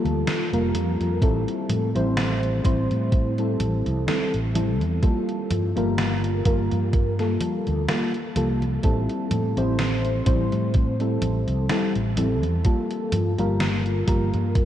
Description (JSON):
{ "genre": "vaporwave", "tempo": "63 BPM", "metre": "4/4", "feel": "swing 55% on 16ths", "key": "G dorian", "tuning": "A4 = 440 Hz", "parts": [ { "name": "mellow FM electric piano", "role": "accompaniment", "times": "0.0-14.7 s", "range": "G3 to C5", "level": "-24 LUFS", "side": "left 1 dB", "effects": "analog chorus, tape echo" }, { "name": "mellow fretless electric bass", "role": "bass", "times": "0.0-14.7 s", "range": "F1 to A2", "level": "-25 LUFS", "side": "equal", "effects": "none" }, { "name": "gated 80s digital drum machine", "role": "drums", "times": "0.1-14.7 s", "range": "congas, hi-hat, snare drum", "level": "-30 LUFS", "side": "right 1 dB", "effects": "gated reverb, gated reverb snare" }, { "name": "electronic kick drum", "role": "drums", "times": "1.2-14.7 s", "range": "none", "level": "-20 LUFS", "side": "equal", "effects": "none" } ], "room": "moderate cathedral reverb, RT60 5.8 s", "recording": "dreamy mix soaked in reverb, cassette tape", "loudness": "-21 LUFS", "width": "side -11 dB against mid", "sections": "0.0-14.7 A section", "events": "none", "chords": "0.0 Gm9; 1.2 Am7; 5.0 Gm9; 8.8 Am7; 12.6 Gm9" }